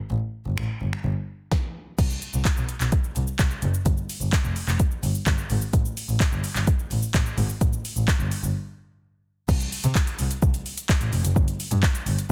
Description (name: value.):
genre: dance-pop.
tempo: 128 BPM.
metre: 4/4.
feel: straight.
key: unclear.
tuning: A4 = 441 Hz.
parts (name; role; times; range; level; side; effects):
dark double bass; bass; 0.1-12.3 s; F1 to C3; -28 LUFS; equal; sidechain pumping.
smooth R&B drum kit; drums; 0.6-12.3 s; crash cymbal, finger snaps, handclaps, hi-hat, kick drum, shaker, snare drum; -26 LUFS; equal; soft clipping on snare.
room: little or no reverb.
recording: dense, heavily limited modern master.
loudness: -25 LUFS.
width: mono.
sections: 0.0-2.0 A section; 2.0-9.5 B section; 9.5-12.3 C section.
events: break 8.5-9.5.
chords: none.